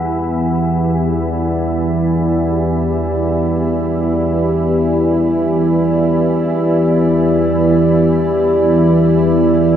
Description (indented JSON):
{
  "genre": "dark ambient drone",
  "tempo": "free time",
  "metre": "none",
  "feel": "none",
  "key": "E minor",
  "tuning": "A4 = 443 Hz",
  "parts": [
    { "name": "dark analog pad", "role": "sustained chords", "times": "0.0-9.8 s", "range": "E4 to D5", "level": "-16 LUFS", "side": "equal", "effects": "chorus, shimmer reverb" },
    { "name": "organ-like drone", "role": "drone", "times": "0.0-9.8 s", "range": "E2 to E3", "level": "-15 LUFS", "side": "right 1 dB", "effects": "ensemble chorus, built-in reverb" },
    { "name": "bronze singing bowl", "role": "texture", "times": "0.0-9.8 s", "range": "F#5", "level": "-30 LUFS", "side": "left 4 dB", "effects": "shimmer reverb" }
  ],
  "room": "wet cathedral reverb, RT60 6.7 s",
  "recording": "none",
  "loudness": "-12 LUFS",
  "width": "side -9 dB against mid",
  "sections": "0.0-9.8 A section",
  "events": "none",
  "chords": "0.0 Em",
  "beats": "free time"
}